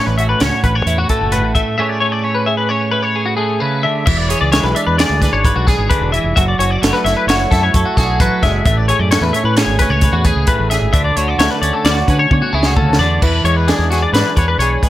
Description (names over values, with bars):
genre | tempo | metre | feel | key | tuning
math rock and midwest emo | 131 BPM | 5/4 | straight | A major | A4 = 439 Hz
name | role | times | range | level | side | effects
twelve-string electric guitar | accompaniment | 0.0-14.9 s | A2 to C#5 | -19 LUFS | right 4 dB | none
twangy electric guitar | arpeggios | 0.0-14.9 s | F#4 to E5 | -17 LUFS | left 5 dB | ensemble chorus, digital delay
fingered electric bass | bass | 0.1-14.8 s | E1 to D3 | -18 LUFS | equal | none
compact cocktail drum kit | drums | 0.2-14.9 s | crash cymbal, hi-hat, kick drum, snare drum, toms | -17 LUFS | equal | none
room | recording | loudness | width
little or no reverb | none | -12 LUFS | side -14 dB against mid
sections
0.0-4.1 A section; 4.1-13.2 B section; 13.2-14.9 A section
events
drum fill 12.3-13.2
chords
0.0 A69; 1.8 Amaj7; 4.1 E7; 6.4 F#m7; 8.6 Amaj7; 10.9 Dmaj7; 13.2 E7